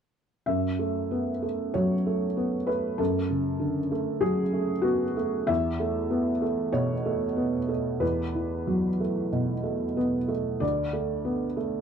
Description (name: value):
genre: neoclassical minimalist piano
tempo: 95 BPM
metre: 4/4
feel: uneven beats, rubato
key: F# minor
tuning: A4 = 440 Hz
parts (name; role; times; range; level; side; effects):
- felt-muted upright piano; solo; 0.5-11.8 s; D2 to E5; -25 LUFS; equal; none
room: light reverb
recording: dark, warm production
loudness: -25 LUFS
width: side -7 dB against mid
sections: 0.5-11.8 A section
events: none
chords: 0.5 F#m7; 5.5 Aadd9/E; 10.6 Bm7/D